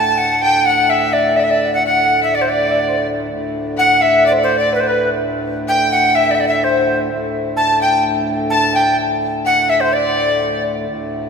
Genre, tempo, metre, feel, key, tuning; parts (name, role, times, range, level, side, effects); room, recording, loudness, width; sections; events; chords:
medieval dance; 126 BPM; 2/4; straight; D mixolydian; A4 = 440 Hz
bright tenor recorder; melody; 0.0-10.6 s; B4 to A5; -15 LUFS; right 1 dB
dark fiddle; second line; 0.0-10.6 s; B4 to A5; -19 LUFS; left 4 dB
hand-pumped harmonium; drone; 0.0-11.3 s; D2 to A2; -23 LUFS; equal
wet church reverb, RT60 3.4 s; minimal, uncompressed stereo recording; -13 LUFS; side -6 dB against mid
0.0-3.3 A section; 3.3-10.9 B section